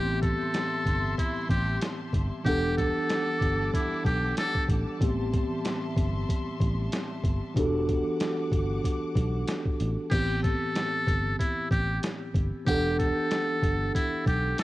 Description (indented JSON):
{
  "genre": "hip hop, boom-bap hip-hop",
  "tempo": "94 BPM",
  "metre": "4/4",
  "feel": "swing 56% on 16ths",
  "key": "A dorian",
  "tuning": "A4 = 440 Hz",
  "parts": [
    { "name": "trumpet with metal mute", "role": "melody", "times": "0.0-4.7, 10.1-14.6 s", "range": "E4 to A4", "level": "-30 LUFS", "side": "equal", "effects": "high-pass filter, low-pass filter, cassette tape, analog delay" },
    { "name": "mellow tine electric piano", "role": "accompaniment", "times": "0.0-14.6 s", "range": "A2 to F#5", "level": "-30 LUFS", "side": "equal", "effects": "fast stereo tremolo, cassette tape, high-pass filter, low-pass filter" },
    { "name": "clear studio string section", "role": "sustained chords", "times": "0.0-10.1 s", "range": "G3 to D6", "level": "-40 LUFS", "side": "left 2 dB", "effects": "high-pass filter, low-pass filter, cassette tape" },
    { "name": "fingered electric bass", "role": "bass", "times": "0.0-14.5 s", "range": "E1 to B1", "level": "-29 LUFS", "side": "equal", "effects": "tube saturation" },
    { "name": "trip hop sampler-style drum kit", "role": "drums", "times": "0.2-14.6 s", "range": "crash cymbal, hi-hat, kick drum, snare drum", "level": "-29 LUFS", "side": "equal", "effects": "cassette tape" }
  ],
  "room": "digital ambience",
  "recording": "home recording on cassette",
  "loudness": "-25 LUFS",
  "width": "side -17 dB against mid",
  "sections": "0.0-10.1 A section; 10.1-14.6 A section",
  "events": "none",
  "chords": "0.0 Am7; 2.5 Em11; 5.0 Am7; 7.6 Em11; 10.1 Am7; 12.7 Em11"
}